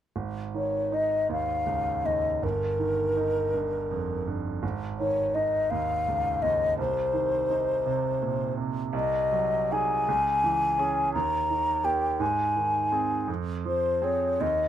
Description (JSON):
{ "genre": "classical, romantic duo for flute and grand piano", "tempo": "55 BPM (dotted quarters)", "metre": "6/8", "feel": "uneven beats, rubato", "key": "Ab major", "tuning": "A4 = 442 Hz", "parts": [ { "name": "clear concert grand piano", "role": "accompaniment", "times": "0.2-14.7 s", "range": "G1 to Ab4", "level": "-30 LUFS", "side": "right 5 dB", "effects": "none" }, { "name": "mellow hollow concert flute", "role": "melody", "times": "0.6-14.7 s", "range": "Bb4 to Bb5", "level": "-25 LUFS", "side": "left 2 dB", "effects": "none" } ], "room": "little or no reverb", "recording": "close, detailed microphones", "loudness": "-24 LUFS", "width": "side -10 dB against mid", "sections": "0.2-14.7 A section", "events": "none", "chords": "0.2 Ab5; 2.4 Eb/G; 4.6 Ab5; 6.8 Cm7; 8.9 Ab7/C; 10.1 Dbm; 11.1 Eb; 12.2 Ab; 13.3 Fm", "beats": "| 0.17 1.31 | 2.43 3.54 | 4.62 5.71 | 6.79 7.85 | 8.93 10.07 | 11.14 12.21 | 13.28 14.41" }